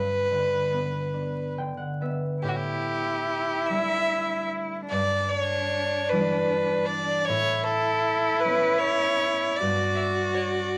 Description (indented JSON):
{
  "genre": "celtic folk, Celtic slow air",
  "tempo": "47-52 BPM (dotted quarters)",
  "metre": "6/8",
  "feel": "rubato",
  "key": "A mixolydian",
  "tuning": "A4 = 440 Hz",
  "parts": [
    { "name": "clear fiddle", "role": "melody", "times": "0.0-10.8 s", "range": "F#4 to E5", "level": "-28 LUFS", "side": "equal", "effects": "none" },
    { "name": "concert harp", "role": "accompaniment", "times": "0.0-10.8 s", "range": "G2 to G5", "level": "-34 LUFS", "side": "equal", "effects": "none" },
    { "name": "rich cello", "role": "second line", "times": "2.4-10.8 s", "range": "D4 to F#4", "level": "-30 LUFS", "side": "equal", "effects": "none" }
  ],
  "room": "moderate studio reverb, RT60 0.8 s",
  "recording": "vinyl crackle",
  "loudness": "-26 LUFS",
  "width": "mono",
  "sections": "0.0-2.4 A section; 2.4-10.8 A section",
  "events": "harp fill 1.1-2.4",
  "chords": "0.0 G; 2.4 A7sus4; 4.9 Em7/G; 7.3 Aadd9; 9.6 Gadd9"
}